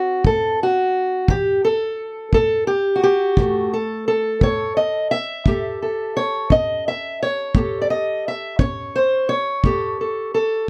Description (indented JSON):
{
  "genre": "acoustic country blues, solo or duo",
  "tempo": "58 BPM (dotted quarters)",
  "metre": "12/8",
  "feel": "straight",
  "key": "A mixolydian",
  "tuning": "A4 = 441 Hz",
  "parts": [
    { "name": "fingerpicked steel-string acoustic guitar", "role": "melody", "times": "0.0-10.7 s", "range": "E3 to E5", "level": "-21 LUFS", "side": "equal", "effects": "none" },
    { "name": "kick drum", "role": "drums", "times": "0.2-9.8 s", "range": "none", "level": "-22 LUFS", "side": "equal", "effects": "none" }
  ],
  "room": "little or no reverb",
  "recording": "close, detailed microphones",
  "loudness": "-20 LUFS",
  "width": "mono",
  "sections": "0.0-10.7 A section",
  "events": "none",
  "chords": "0.0 D7 (rootless); 1.3 A7",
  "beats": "0.25 | 1.29 2.33 3.37 4.42 | 5.46 6.50 7.55 8.59 | 9.64 10.68"
}